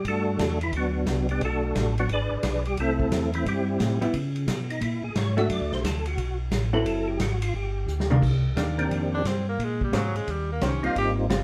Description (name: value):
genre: soul jazz organ trio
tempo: 176 BPM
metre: 4/4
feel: swing 64% on 8ths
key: C minor from 8.2 s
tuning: A4 = 442 Hz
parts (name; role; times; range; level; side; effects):
- percussive tonewheel organ; melody; 0.0-11.3 s; Eb3 to E5; -30 LUFS; equal; slow rotary speaker, chorus vibrato
- mellow tonewheel organ; bass; 0.0-11.4 s; F#1 to C#3; -30 LUFS; equal; slow rotary speaker
- vintage drum kit; drums; 0.0-11.4 s; crash cymbal, hi-hat, kick drum, ride cymbal, snare drum, toms; -32 LUFS; equal; none
- hollow-body jazz guitar; accompaniment; 4.0-11.4 s; D#3 to C5; -30 LUFS; equal; none
- clear tenor saxophone; melody; 9.1-11.1 s; F#3 to G4; -32 LUFS; equal; none
room: moderate studio reverb, RT60 0.7 s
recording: band playing live in one room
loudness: -26 LUFS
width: mono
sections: 0.0-8.2 A section; 8.2-11.4 A section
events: tonewheel organ solo 0.0-8.2; drum fill 7.9-8.2; tenor saxophone solo 8.2-11.4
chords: 0.0 Gmaj9; 1.4 Bm7; 2.1 G#dim; 2.8 Am7; 4.1 Badd9; 4.8 F#; 5.5 Bm7; 6.9 F#m7b5; 7.5 G5; 8.2 Cm9; 9.6 Bbm9; 10.3 Eb13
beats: | 0.05 0.39 0.73 1.07 | 1.41 1.75 2.09 2.44 | 2.77 3.12 3.46 3.80 | 4.14 4.48 4.82 5.16 | 5.50 5.84 6.18 6.52 | 6.86 7.20 7.54 7.88 | 8.22 8.57 8.91 9.25 | 9.59 9.93 10.28 10.62 | 10.96 11.30